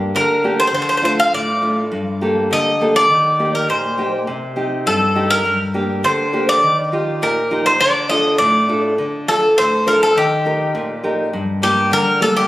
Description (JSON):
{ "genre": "greek folk", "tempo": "102 BPM", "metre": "2/4", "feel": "straight", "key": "D phrygian", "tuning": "A4 = 437 Hz", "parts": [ { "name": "nylon-string guitar", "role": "accompaniment", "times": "0.0-12.5 s", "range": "G2 to Bb4", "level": "-18 LUFS", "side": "equal", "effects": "none" }, { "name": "Greek bouzouki", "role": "melody", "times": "0.2-12.5 s", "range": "G4 to F5", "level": "-16 LUFS", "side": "equal", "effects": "none" } ], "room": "moderate plate reverb, RT60 3.0 s", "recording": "recorded on a phone in the room, club reverb", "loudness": "-14 LUFS", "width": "side -16 dB against mid", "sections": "0.0-9.0 A section; 9.0-12.5 B section", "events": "none", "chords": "0.0 Gm; 0.7 Dm; 1.9 Gmadd9; 3.1 Eb; 4.3 Cm; 5.5 Gm; 6.6 Ebadd9; 7.8 Dm; 10.2 Eb; 11.3 Gm", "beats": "0.16 | 0.75 1.34 | 1.93 2.52 | 3.10 3.69 | 4.28 4.87 | 5.46 6.05 | 6.63 7.22 | 7.81 8.39 | 8.98 9.57 | 10.15 10.74 | 11.33 11.91" }